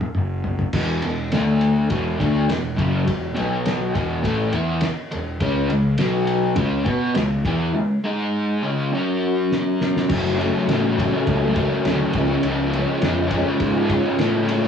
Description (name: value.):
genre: garage rock duo or trio.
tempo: 102 BPM.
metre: 4/4.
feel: straight.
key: F# harmonic minor from 10.1 s.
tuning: A4 = 440 Hz.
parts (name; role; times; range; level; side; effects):
fuzz picked electric bass; bass; 0.0-14.7 s; E1 to B2; -25 LUFS; left 1 dB; overdrive, tube saturation.
cloth-damped thuddy drum kit; drums; 0.0-14.6 s; crash cymbal, kick drum, ride cymbal, snare drum, toms; -26 LUFS; left 1 dB; cassette tape.
crunchy overdriven guitar; riff; 0.7-14.7 s; E2 to B4; -20 LUFS; left 1 dB; harmonic tremolo.
room: light reverb.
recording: home recording on cassette, small room ambience.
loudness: -18 LUFS.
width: side -7 dB against mid.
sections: 0.7-10.1 A section; 10.1-14.7 B section.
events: drum fill 0.0-0.7, 9.5-10.1.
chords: 0.0 N.C.; 0.7 E5; 1.3 D5; 1.9 E5; 3.4 B5; 4.0 E5; 5.4 C#5; 6.0 B5; 6.6 C#5; 8.1 G#5; 8.6 C#5; 8.9 F#5; 10.1 F#m; 12.1 C#.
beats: 0.15 | 0.73 1.32 1.90 2.49 | 3.07 3.66 4.24 4.83 | 5.42 6.00 6.59 7.17 | 7.76 8.34 8.93 9.51 | 10.10 10.68 11.27 11.85 | 12.44 13.02 13.61 14.19.